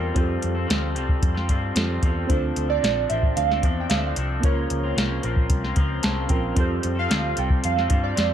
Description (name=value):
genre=indie pop, bedroom pop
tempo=112 BPM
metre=4/4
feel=straight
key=F major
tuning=A4 = 440 Hz
part: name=warm analog keys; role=melody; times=0.0-8.3 s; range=Bb4 to G5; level=-27 LUFS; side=right 6 dB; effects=phaser, wide subtle chorus, tape echo
part: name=electric guitar through a small old amp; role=accompaniment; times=0.0-8.3 s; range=Db3 to A4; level=-29 LUFS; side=left 4 dB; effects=wide subtle chorus, vibrato effect
part: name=reed electric piano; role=accompaniment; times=0.0-8.3 s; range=Bb3 to A5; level=-31 LUFS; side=right 5 dB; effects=fast tremolo, cassette tape
part: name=vintage muted picked electric bass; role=bass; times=0.0-8.3 s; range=A1 to G2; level=-27 LUFS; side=equal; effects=none
part: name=soft vintage rhythm box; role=drums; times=0.2-8.3 s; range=hi-hat, kick drum, snare drum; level=-23 LUFS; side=equal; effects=none
room=light reverb, digital ambience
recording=none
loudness=-20 LUFS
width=side -10 dB against mid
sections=0.0-8.3 A section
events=reed electric piano fill 5.8-6.6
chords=0.0 Fadd9; 2.3 Dm7; 4.4 Bbmadd9; 6.6 Fadd9